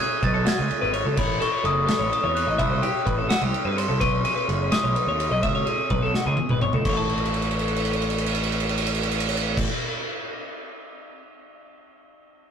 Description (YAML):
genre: math rock and midwest emo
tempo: 85 BPM (dotted quarters)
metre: 6/8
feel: straight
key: A lydian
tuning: A4 = 440 Hz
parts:
  - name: glockenspiel with soft plastic mallets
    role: melody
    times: 0.0-9.6 s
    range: B5 to A6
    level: -28 LUFS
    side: left 2 dB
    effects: none
  - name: twelve-string electric guitar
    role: arpeggios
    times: 0.0-9.7 s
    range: F#4 to A5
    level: -27 LUFS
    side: left 3 dB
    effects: none
  - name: fuzz picked electric bass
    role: bass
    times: 0.2-9.6 s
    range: F#1 to G2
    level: -26 LUFS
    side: right 1 dB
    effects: overdrive
  - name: loose indie drum kit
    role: drums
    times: 0.2-11.2 s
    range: crash cymbal, kick drum, ride cymbal, snare drum, toms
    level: -26 LUFS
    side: right 1 dB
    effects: none
room: moderate booth ambience, RT60 0.2 s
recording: rough rehearsal-room recording, tube saturation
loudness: -21 LUFS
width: side -7 dB against mid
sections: 0.0-6.8 A section; 6.8-9.7 B section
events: drum fill 6.1-6.8, 7.1-9.6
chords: 0.0 C#7(no3); 1.2 A6; 2.6 C6; 4.0 G#m7; 5.4 C#m7; 6.8 A